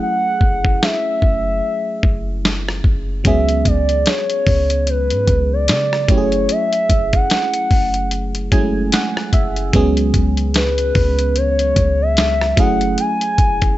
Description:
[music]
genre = contemporary R&B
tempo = 74 BPM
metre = 4/4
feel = swing 58% on 16ths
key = F# minor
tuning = A4 = 439 Hz
[part]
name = gliding portamento lead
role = melody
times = 0.0-13.8 s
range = B4 to G#5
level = -18 LUFS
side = left 1 dB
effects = chorus, slapback echo
[part]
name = FM electric piano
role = accompaniment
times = 0.0-13.8 s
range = F#3 to G#5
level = -22 LUFS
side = right 3 dB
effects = chorus
[part]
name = clean 808-style bass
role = bass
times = 0.4-13.8 s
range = F#1 to C#3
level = -19 LUFS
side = equal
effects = none
[part]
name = dusty soul sampler-style drum kit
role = drums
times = 0.4-13.8 s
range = hi-hat, kick drum, rim click, snare drum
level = -17 LUFS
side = equal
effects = vintage 12-bit sampler grit
[sound]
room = little or no reverb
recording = nothing above 7.9 kHz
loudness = -14 LUFS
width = side -15 dB against mid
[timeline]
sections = 0.0-13.8 A section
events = break 0.0-3.2; FM electric piano fill 8.1-9.7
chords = 0.0 F#m9; 3.2 C#7sus4; 6.1 F#m9; 9.7 C#7sus4; 12.6 F#m9

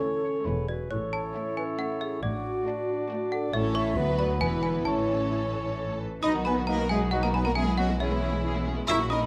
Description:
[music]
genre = cinematic, playful, whimsical film cue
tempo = 136 BPM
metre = 3/4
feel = straight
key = A major, B major from 6.2 s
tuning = A4 = 441 Hz
[part]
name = trough xylophone with plastic mallets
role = melody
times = 0.0-9.3 s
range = C#5 to E6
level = -36 LUFS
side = equal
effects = none
[part]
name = warm studio violin section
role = melody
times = 0.0-9.3 s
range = C#4 to B4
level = -42 LUFS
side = equal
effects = none
[part]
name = clear clarinet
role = second line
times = 0.0-8.6 s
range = E4 to C#5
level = -41 LUFS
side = equal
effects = none
[part]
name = clear studio violin section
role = second line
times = 0.0-9.2 s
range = B3 to E5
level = -41 LUFS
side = equal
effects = none
[part]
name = mellow cor anglais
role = second line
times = 0.0-9.2 s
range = E4 to E5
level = -39 LUFS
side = equal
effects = none
[part]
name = mellow hollow concert flute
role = second line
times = 0.0-9.3 s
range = E4 to C#6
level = -37 LUFS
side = equal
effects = none
[part]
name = mellow bassoon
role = accompaniment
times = 0.0-8.6 s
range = B3 to F#4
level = -39 LUFS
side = equal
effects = none
[part]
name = warm studio viola section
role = accompaniment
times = 0.0-9.3 s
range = D#3 to D#4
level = -38 LUFS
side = equal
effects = none
[part]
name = clear French horn section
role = sustained chords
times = 0.0-9.2 s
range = E3 to A4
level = -37 LUFS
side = equal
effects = none
[part]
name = concert harp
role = arpeggios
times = 0.0-9.3 s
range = A2 to F#5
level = -38 LUFS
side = equal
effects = none
[part]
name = rich studio double bass section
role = bass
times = 0.5-9.3 s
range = E1 to D2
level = -36 LUFS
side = equal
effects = none
[part]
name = warm studio cello section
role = bass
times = 0.5-9.3 s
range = D2 to E4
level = -36 LUFS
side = equal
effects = none
[sound]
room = moderate scoring stage reverb, RT60 2.0 s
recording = none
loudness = -28 LUFS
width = mono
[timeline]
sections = 0.0-6.2 A section; 6.2-9.3 B section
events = none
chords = 0.5 E; 0.9 A; 2.2 D/A; 3.5 A; 4.0 Bm/D; 4.4 E; 4.9 A; 6.2 B; 7.6 C#m7/B

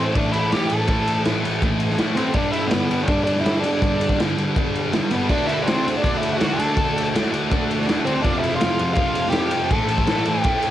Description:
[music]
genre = garage rock duo or trio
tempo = 163 BPM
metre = 4/4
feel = straight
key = A minor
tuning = A4 = 440 Hz
[part]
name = octave-fuzz lead guitar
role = melody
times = 0.0-10.7 s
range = B3 to A4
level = -23 LUFS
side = equal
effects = distortion, cassette tape
[part]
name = thick fuzz guitar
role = riff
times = 0.0-10.7 s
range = F2 to D4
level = -22 LUFS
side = equal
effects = distortion, cassette tape
[part]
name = raw garage drum kit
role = drums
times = 0.2-10.7 s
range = crash cymbal, kick drum, ride cymbal, snare drum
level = -23 LUFS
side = equal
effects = cassette tape
[part]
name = combo organ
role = sustained chords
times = 5.3-10.7 s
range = E4 to D5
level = -32 LUFS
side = right 1 dB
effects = none
[sound]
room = light reverb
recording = home recording on cassette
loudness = -18 LUFS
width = side -12 dB against mid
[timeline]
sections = 0.0-10.7 A section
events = none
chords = 0.0 A5; 2.4 G; 5.3 D; 8.2 F; 9.7 Am

